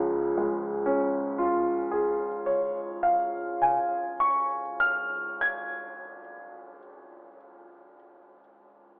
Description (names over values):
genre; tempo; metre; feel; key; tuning
classical, impressionist solo piano; 29 BPM; 4/4; rubato; Db major; A4 = 441 Hz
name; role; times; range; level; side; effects
clear grand piano; solo; 0.0-9.0 s; Db2 to Ab6; -25 LUFS; equal; none
room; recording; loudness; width
moderate recital hall reverb, RT60 1.4 s; telephone sound; -24 LUFS; side -37 dB against mid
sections
0.0-6.9 A section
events
none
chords
0.0 Db